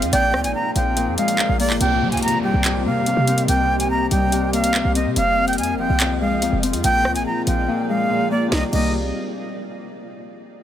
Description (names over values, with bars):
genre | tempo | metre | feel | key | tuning
hip hop, drill | 143 BPM | 4/4 | half-time | C minor | A4 = 435 Hz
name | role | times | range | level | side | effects
warbly dusty pluck | second line | 0.0-0.5 s | D5 to F5 | -29 LUFS | right 4 dB | chorus, digital delay
Celtic harp | accompaniment | 0.0-9.6 s | F2 to C4 | -23 LUFS | left 4 dB | none
granular cloud pad | sustained chords | 0.0-8.7 s | F3 to Eb5 | -28 LUFS | right 2 dB | built-in reverb
short 808-style bass | bass | 0.0-9.1 s | F1 to G3 | -23 LUFS | right 1 dB | none
drill drum kit | drums | 0.0-8.8 s | crash cymbal, handclaps, hi-hat, rim click, snare drum | -25 LUFS | equal | none
bright jazz flute | melody | 0.1-8.9 s | D5 to Bb5 | -22 LUFS | right 1 dB | digital delay
downlifter | sound effects | 1.8-5.2 s | none | -32 LUFS | right 1 dB | none
room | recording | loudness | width
light reverb | none | -17 LUFS | side -10 dB against mid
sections
0.0-1.8 A section; 1.8-8.5 B section; 8.5-10.2 C section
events
drums muted 7.7-8.5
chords
0.1 Bb7; 1.8 Cm7; 5.2 Fm7; 6.8 Bb7; 8.5 Cm7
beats
| 0.13 0.55 0.97 1.39 | 1.81 2.23 2.65 3.06 | 3.48 3.90 4.32 4.74 | 5.16 5.58 6.00 6.42 | 6.84 7.26 7.68 8.10 | 8.52 8.94 9.36